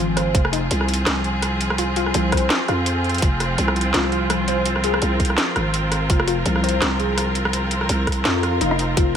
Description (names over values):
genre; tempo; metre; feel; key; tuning
half-time drum and bass; 167 BPM; 4/4; swing 56% on 16ths, half-time; F minor; A4 = 441 Hz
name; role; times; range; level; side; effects
clear studio string section; sustained chords; 0.0-9.2 s; F3 to Bb4; -24 LUFS; right 1 dB; sidechain pumping
warbly dusty pluck; arpeggios; 0.0-9.1 s; F3 to C5; -25 LUFS; left 2 dB; chorus, ping-pong delay
growling 808-style bass; bass; 0.0-9.2 s; F1 to F2; -22 LUFS; equal; tube saturation
drum and bass drum kit; drums; 0.2-9.1 s; hi-hat, rim click, snare drum; -23 LUFS; equal; none
electronic kick drum; drums; 0.3-9.1 s; none; -20 LUFS; equal; none
swell; sound effects; 8.4-9.0 s; none; -28 LUFS; left 2 dB; none
room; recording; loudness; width
light reverb; none; -18 LUFS; side -8 dB against mid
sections
0.0-9.2 A section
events
swell 8.4-9.0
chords
0.0 Fm